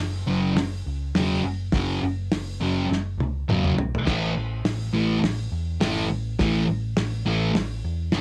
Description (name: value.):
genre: garage rock duo or trio.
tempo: 103 BPM.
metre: 4/4.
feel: straight.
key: F# minor.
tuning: A4 = 441 Hz.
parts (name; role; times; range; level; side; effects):
hollow-body short-scale picked electric bass; bass; 0.0-8.2 s; E1 to E2; -31 LUFS; equal; none.
thick fuzz guitar; riff; 0.3-8.2 s; F#2 to A3; -26 LUFS; equal; distortion, cassette tape.
cloth-damped thuddy drum kit; drums; 0.6-8.2 s; crash cymbal, hi-hat, kick drum, snare drum, toms; -29 LUFS; equal; cassette tape.
room: light reverb.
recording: home recording on cassette.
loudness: -25 LUFS.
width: mono.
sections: 0.0-8.2 A section.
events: drum fill 2.9-4.1.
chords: 0.0 F#5; 4.1 A5.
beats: 0.56 1.15 | 1.73 2.32 2.90 3.49 | 4.07 4.65 5.24 5.82 | 6.40 6.98 7.56 8.14.